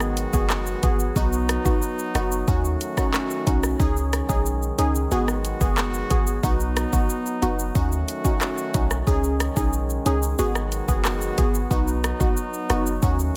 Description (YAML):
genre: dancehall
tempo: 91 BPM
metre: 4/4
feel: straight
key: unclear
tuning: A4 = 438 Hz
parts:
  - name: clear brass ensemble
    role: sustained chords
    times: 0.0-13.4 s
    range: D#3 to F#4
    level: -33 LUFS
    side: equal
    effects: sidechain pumping
  - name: clean 808-style bass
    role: bass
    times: 0.0-13.3 s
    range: F#1 to D#2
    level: -28 LUFS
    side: equal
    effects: none
  - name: afro-pop drum kit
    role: drums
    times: 0.0-13.3 s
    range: handclaps, hi-hat, kick drum, rim click, shaker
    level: -27 LUFS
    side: equal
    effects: none
  - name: glassy wavetable pluck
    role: accompaniment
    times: 0.3-13.2 s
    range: B3 to G#4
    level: -28 LUFS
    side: equal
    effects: chorus, sidechain pumping
room: light reverb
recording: none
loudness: -23 LUFS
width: mono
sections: 0.0-13.4 A section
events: none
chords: 0.0 G#m7; 2.5 D#m7b5; 3.8 C#sus2; 5.1 G#m7; 7.8 D#m7b5; 9.1 C#sus2; 10.4 G#m7